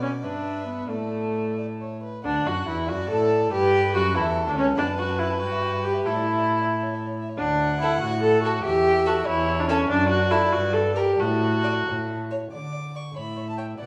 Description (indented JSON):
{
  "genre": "quick classical-period movement for string quartet",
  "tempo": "88-97 BPM (dotted quarters)",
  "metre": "6/8",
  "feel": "rubato",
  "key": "D major",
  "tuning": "A4 = 440 Hz",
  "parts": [
    { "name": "rich violin", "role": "melody", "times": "0.0-13.9 s", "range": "C#4 to D6", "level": "-35 LUFS", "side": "equal", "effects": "none" },
    { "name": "warm violin", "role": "second line", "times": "0.0-13.9 s", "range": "A4 to F#5", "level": "-33 LUFS", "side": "equal", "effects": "none" },
    { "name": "rich viola", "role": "accompaniment", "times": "0.0-13.9 s", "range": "A3 to E5", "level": "-26 LUFS", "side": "equal", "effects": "none" },
    { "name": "warm cello", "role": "bass", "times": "0.0-13.9 s", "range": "C#2 to D3", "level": "-31 LUFS", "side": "equal", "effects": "none" }
  ],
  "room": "wet recital hall reverb, RT60 1.4 s",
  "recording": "studio reverb",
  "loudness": "-24 LUFS",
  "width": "mono",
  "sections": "0.0-2.2 A section; 2.2-12.5 B section; 12.5-13.9 C section",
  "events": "none",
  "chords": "0.2 Em7/G; 0.9 D5/A; 2.2 D; 3.5 A7; 4.8 D69/F# (rootless); 5.4 Em/G; 6.1 Asus4; 7.4 D; 8.7 A7/E (rootless); 9.9 D/F#; 10.5 G5; 11.2 D/A (rootless); 12.5 N.C.; 13.2 A"
}